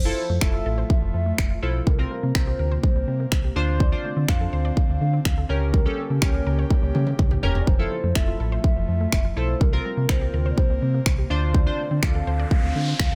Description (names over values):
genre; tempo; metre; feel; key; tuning
dance-pop; 124 BPM; 4/4; straight; F major; A4 = 440 Hz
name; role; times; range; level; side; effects
hollow clarinet-like synth lead; melody; 0.0-13.2 s; Bb4 to F5; -34 LUFS; equal; chorus, dub echo
airy breathy pad; sustained chords; 0.0-13.2 s; C3 to G4; -36 LUFS; equal; chorus, sidechain pumping
unison pluck; arpeggios; 0.0-13.2 s; F3 to D5; -40 LUFS; equal; none
sub bass with octave; bass; 0.0-13.2 s; E1 to D3; -26 LUFS; equal; sidechain pumping
chorused retro synth keys; accompaniment; 0.1-12.5 s; C4 to C5; -33 LUFS; equal; sidechain pumping
pop drum kit; drums; 0.4-13.1 s; finger snaps, kick drum, toms; -24 LUFS; equal; none
noise sweep; sound effects; 12.0-13.2 s; none; -36 LUFS; equal; none
room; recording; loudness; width
digital ambience; none; -22 LUFS; mono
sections
0.0-13.2 A section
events
drum fill 6.7-7.7; noise sweep 12.0-13.2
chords
0.0 Fmaj7; 1.9 C7sus4; 3.6 Dm7; 5.5 Bbm6/Db; 7.7 Fmaj7; 9.6 C7sus4; 11.3 Dm7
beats
0.42 0.90 1.38 | 1.87 2.35 2.83 3.32 | 3.80 4.29 4.77 5.25 | 5.74 6.22 6.71 7.19 | 7.67 8.16 8.64 9.12 | 9.61 10.09 10.58 11.06 | 11.54 12.03 12.51 13.00